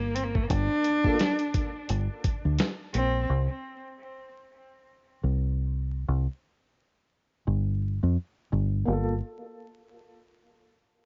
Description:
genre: trip hop.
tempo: 86 BPM.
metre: 4/4.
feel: swing 57% on 16ths.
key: G minor.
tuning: A4 = 443 Hz.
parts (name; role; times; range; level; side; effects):
rich cello; melody; 0.0-3.3 s; A3 to D4; -32 LUFS; equal; vintage 12-bit sampler grit, tape echo.
deep dub fingered electric bass; bass; 0.0-9.2 s; G1 to F2; -28 LUFS; equal; none.
dusty soul sampler-style drum kit; drums; 0.2-3.1 s; hi-hat, kick drum, snare drum; -30 LUFS; equal; small room ambience, cassette tape.
felt-muted upright piano; accompaniment; 1.0-1.1, 8.9-9.2 s; Bb3 to A4; -34 LUFS; equal; tremolo, vintage 12-bit sampler grit, cassette tape, tape echo.
room: small room ambience.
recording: home recording on cassette, vinyl crackle, nothing above 7.5 kHz.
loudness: -28 LUFS.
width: mono.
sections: 0.0-8.9 A section; 8.9-11.1 B section.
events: none.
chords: 0.0 Gm; 3.3 C5; 8.9 Gm7.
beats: | 0.50 1.20 1.89 2.59 | 3.29 3.99 4.68 5.38 | 6.08 6.78 7.47 8.17 | 8.87.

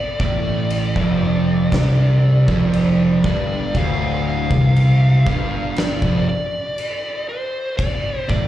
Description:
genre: stoner and doom metal.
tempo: 59 BPM.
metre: 4/4.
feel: straight.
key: D minor.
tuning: A4 = 440 Hz.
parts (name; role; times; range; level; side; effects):
fuzz lead guitar; melody; 0.0-8.5 s; C5 to F5; -25 LUFS; left 1 dB; distortion, digital delay.
fuzz guitar; riff; 0.2-8.5 s; D2 to C3; -17 LUFS; right 1 dB; distortion.
fuzz picked electric bass; bass; 0.2-8.5 s; D1 to C2; -23 LUFS; equal; overdrive, tube saturation.
oversized low-tuned drum kit; drums; 0.2-8.5 s; crash cymbal, kick drum, snare drum; -24 LUFS; equal; none.
room: small room ambience.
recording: live gig heard through the venue's PA, club reverb.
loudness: -16 LUFS.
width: side -13 dB against mid.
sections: 0.0-8.5 A section.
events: none.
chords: 0.0 Dm.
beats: 0.71 1.72 2.73 | 3.74 4.75 5.76 6.77 | 7.78.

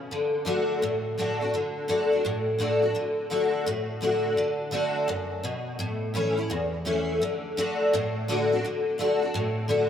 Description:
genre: country.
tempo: 169 BPM.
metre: 4/4.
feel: swing 66% on 8ths.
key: D major.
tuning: A4 = 439 Hz.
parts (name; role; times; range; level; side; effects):
picked steel-string acoustic guitar; solo; 0.0-9.9 s; E2 to F#4; -24 LUFS; left 1 dB; ensemble chorus, tape echo.
room: wet plate reverb, RT60 2.6 s.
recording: dreamy mix soaked in reverb.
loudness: -24 LUFS.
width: side -9 dB against mid.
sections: 0.0-8.6 A section; 8.6-9.9 A section.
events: none.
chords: 0.1 D; 5.8 A; 7.2 D.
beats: | 0.12 0.47 0.83 1.18 | 1.54 1.89 2.25 2.60 | 2.96 3.31 3.67 4.02 | 4.38 4.73 5.09 5.44 | 5.80 6.15 6.51 6.86 | 7.22 7.57 7.93 8.28 | 8.64 8.99 9.35 9.70.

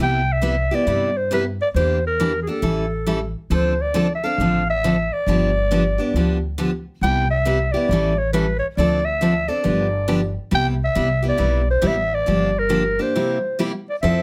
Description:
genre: acoustic string swing (jazz manouche).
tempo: 137 BPM.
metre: 4/4.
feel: swing 64% on 8ths.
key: C major.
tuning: A4 = 437 Hz.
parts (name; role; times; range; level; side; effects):
growling clarinet; melody; 0.0-14.2 s; Ab4 to G5; -24 LUFS; equal; none.
picked steel-string acoustic guitar; accompaniment; 0.0-14.2 s; C3 to A4; -24 LUFS; equal; none.
upright bass; bass; 0.0-14.2 s; G1 to G2; -25 LUFS; equal; none.
room: light reverb.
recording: close, detailed microphones.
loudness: -20 LUFS.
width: mono.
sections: 0.0-14.0 A section.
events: break 13.2-14.0.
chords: 0.0 Cmaj7; 1.8 Em7b5; 2.6 A7; 3.5 Dm7; 5.3 G7; 7.0 Cmaj7; 7.9 A7; 8.8 Dm7; 9.6 G7; 10.5 Cmaj7; 12.3 Gm7; 13.2 C7.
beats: 0.43 0.87 1.31 | 1.75 2.19 2.63 3.07 | 3.51 3.95 4.39 4.83 | 5.27 5.71 6.14 6.58 | 7.02 7.46 7.90 8.34 | 8.77 9.21 9.65 10.09 | 10.53 10.96 11.40 11.84 | 12.28 12.72 13.16 13.60 | 14.03.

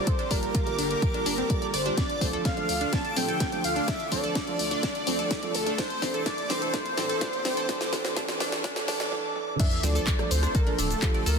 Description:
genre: progressive house.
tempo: 126 BPM.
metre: 4/4.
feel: straight.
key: D minor.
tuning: A4 = 437 Hz.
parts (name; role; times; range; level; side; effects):
wide unison lead; melody; 0.0-11.4 s; A4 to A5; -31 LUFS; equal; sidechain pumping, digital delay.
supersaw pad; sustained chords; 0.0-11.4 s; C3 to Bb4; -37 LUFS; equal; sidechain pumping.
dark baby grand piano; stabs; 0.0-11.2 s; E3 to C5; -33 LUFS; right 5 dB; sidechain pumping, digital delay.
backwards swelling texture; texture; 0.0-11.4 s; C6 to D6; -40 LUFS; right 1 dB; built-in reverb, sidechain pumping.
analog pluck; arpeggios; 0.1-11.3 s; C4 to D6; -34 LUFS; equal; chorus, phaser, cassette tape, sidechain pumping, digital delay.
electronic kick drum; drums; 0.1-11.1 s; none; -28 LUFS; equal; overdrive.
house drum kit; drums; 0.1-11.4 s; crash cymbal, handclaps, hi-hat, rim click, shaker, snare drum; -31 LUFS; left 2 dB; none.
saturated sub bass; bass; 0.3-11.4 s; D1 to A2; -31 LUFS; equal; sidechain pumping.
riser and sub drop; sound effects; 4.1-11.4 s; none; -40 LUFS; equal; none.
room: moderate lush hall reverb, RT60 1.7 s, digital ambience.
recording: dense, heavily limited modern master, high-pass filter.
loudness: -24 LUFS.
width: side -6 dB against mid.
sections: 0.0-9.6 A section; 9.6-11.4 B section.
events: build-up 0.0-9.6; filter sweep on grand piano 0.0-9.6; drum fill 2.0-9.1; drop 9.6-11.4; impact 9.6-11.4.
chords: 0.0 Gm7; 2.0 Dm; 5.8 Am; 9.6 Dm.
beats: | 0.07 0.55 1.02 1.50 | 1.98 2.45 2.93 3.40 | 3.88 4.36 4.83 5.31 | 5.79 6.26 6.74 7.21 | 7.69 8.17 8.64 9.12 | 9.60 10.07 10.55 11.02.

